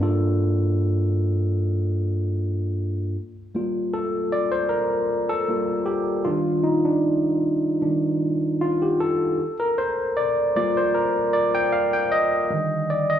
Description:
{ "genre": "soul", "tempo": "77 BPM", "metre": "4/4", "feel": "swing 54% on 16ths", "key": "G minor", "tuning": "A4 = 442 Hz", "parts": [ { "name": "bright tine electric piano", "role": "solo", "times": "0.0-13.2 s", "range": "G2 to G5", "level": "-20 LUFS", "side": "equal", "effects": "none" } ], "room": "moderate echo chamber reverb, RT60 2.4 s", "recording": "small room ambience", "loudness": "-20 LUFS", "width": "side -10 dB against mid", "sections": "0.0-3.2 A section; 3.2-13.2 B section", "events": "tine electric piano solo 3.2-13.2", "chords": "0.0 Gm9; 3.2 Gm7; 6.3 Ebmaj7; 9.4 Gm7; 12.5 Ebmaj7" }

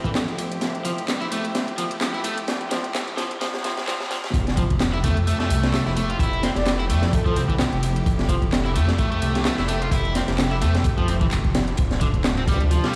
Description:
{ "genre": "breakbeat, breaks", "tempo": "129 BPM", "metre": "4/4", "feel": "swing 56% on 16ths", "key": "unclear", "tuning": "A4 = 440 Hz", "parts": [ { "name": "clear symphonic string section", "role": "sustained chords", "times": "0.0-13.0 s", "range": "C3 to G4", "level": "-33 LUFS", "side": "equal", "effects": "vintage 12-bit sampler grit, sidechain pumping" }, { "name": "crunchy overdriven guitar", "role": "riff", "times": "0.0-13.0 s", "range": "D3 to F4", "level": "-30 LUFS", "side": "equal", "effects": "tube saturation, dub echo" }, { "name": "phased detuned saw bass", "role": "bass", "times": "0.0-12.8 s", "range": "D1 to F2", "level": "-27 LUFS", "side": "equal", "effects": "phaser, tube saturation, high-pass filter" }, { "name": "crunchy breakbeat drum kit", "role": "drums", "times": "0.0-13.0 s", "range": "hi-hat, kick drum, snare drum", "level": "-26 LUFS", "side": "equal", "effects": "none" }, { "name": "garage drum kit", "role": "drums", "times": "0.1-12.9 s", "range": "handclaps, hi-hat", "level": "-35 LUFS", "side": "equal", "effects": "none" }, { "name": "breathy flute-like synth lead", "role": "melody", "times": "6.6-7.3 s", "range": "A4 to D5", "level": "-35 LUFS", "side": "equal", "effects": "chorus, telephone sound, dub echo" } ], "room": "light reverb, studio reverb", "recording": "played on a big sound system in a bare room, stone room reverb, vinyl crackle, high-pass filter", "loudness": "-22 LUFS", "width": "mono", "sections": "0.0-4.3 A section; 4.3-13.0 B section", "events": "build-up 0.0-4.3; filter sweep 0.0-4.3; drum fill 0.6-4.3; drop 4.3-13.0", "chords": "0.0 Fmaj9; 11.8 Dm7" }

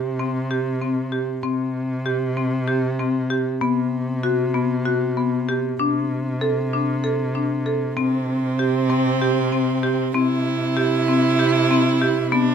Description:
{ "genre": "contemporary instrumental, chamber music in an uneven meter", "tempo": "193 BPM (eighths)", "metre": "7/8", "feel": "straight", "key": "C lydian", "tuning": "A4 = 439 Hz", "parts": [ { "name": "marimba with hard mallets", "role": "arpeggios", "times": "0.0-12.5 s", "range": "B3 to A4", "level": "-22 LUFS", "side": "left 2 dB", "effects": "none" }, { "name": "dark cello", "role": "bass", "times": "0.0-12.5 s", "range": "C3", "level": "-24 LUFS", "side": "equal", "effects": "none" }, { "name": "warm viola", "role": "second line", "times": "8.0-12.5 s", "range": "C4 to E4", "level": "-22 LUFS", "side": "right 6 dB", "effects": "none" } ], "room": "little or no reverb", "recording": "close, detailed microphones", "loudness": "-19 LUFS", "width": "side -7 dB against mid", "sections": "0.0-12.5 A section", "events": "none", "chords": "0.0 C5; 3.6 Gmaj7/C; 5.8 D5/C; 8.0 C5" }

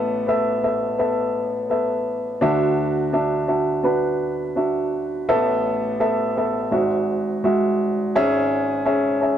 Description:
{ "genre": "folk", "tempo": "84 BPM", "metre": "4/4", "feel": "straight", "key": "A major", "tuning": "A4 = 443 Hz", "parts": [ { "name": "warm upright piano", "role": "solo", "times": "0.0-9.4 s", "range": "G#1 to E5", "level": "-19 LUFS", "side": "equal", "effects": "none" } ], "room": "little or no reverb", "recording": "dark, warm production", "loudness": "-19 LUFS", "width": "side -10 dB against mid", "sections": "0.0-5.3 A section; 5.3-9.4 A section", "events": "none", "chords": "0.0 Asus2; 2.4 Dadd9; 5.3 Asus2; 6.7 Eadd9/G#; 8.1 C#m/G#" }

